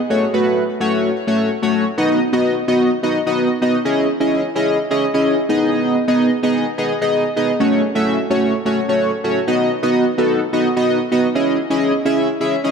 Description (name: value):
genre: pop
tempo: 128 BPM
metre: 4/4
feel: straight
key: B mixolydian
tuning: A4 = 440 Hz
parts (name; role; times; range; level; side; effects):
- chorused polysynth; solo; 0.1-12.7 s; A3 to E5; -15 LUFS; equal; ping-pong delay
room: moderate lush hall reverb, RT60 2.5 s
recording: dreamy mix soaked in reverb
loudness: -15 LUFS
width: side -6 dB against mid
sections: 0.0-2.0 A section; 2.0-12.7 B section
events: build-up 0.0-2.0; drop 2.0-12.7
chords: 0.1 F#m; 2.0 B; 3.9 C#madd9; 5.5 G#m; 7.6 F#m; 9.5 B; 11.4 C#madd9